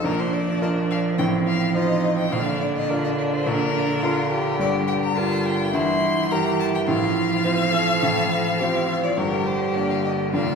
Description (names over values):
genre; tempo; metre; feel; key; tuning
quick classical-period movement for piano quartet; 105 BPM; 4/4; straight; Bb major; A4 = 435 Hz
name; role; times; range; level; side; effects
clear violin; melody; 0.0-10.6 s; Bb4 to C6; -26 LUFS; left 4 dB; none
rich cello; second line; 0.0-10.6 s; D3 to F3; -26 LUFS; right 4 dB; none
rich violin; second line; 0.0-10.6 s; C4 to C5; -27 LUFS; equal; none
bright grand piano; accompaniment; 0.0-10.6 s; F1 to D5; -24 LUFS; right 1 dB; none
room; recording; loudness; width
wet concert hall reverb, RT60 2.4 s; heard from further back in the room; -19 LUFS; side -5 dB against mid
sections
0.0-10.6 A section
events
none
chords
0.0 Bb; 1.2 F7/A; 2.3 Bb; 4.6 Gm; 5.7 C7/G; 6.9 F/A; 9.2 Gm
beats
| 0.04 0.61 1.18 1.75 | 2.32 2.89 3.46 4.03 | 4.60 5.17 5.74 6.31 | 6.88 7.45 8.03 8.60 | 9.18 9.75 10.33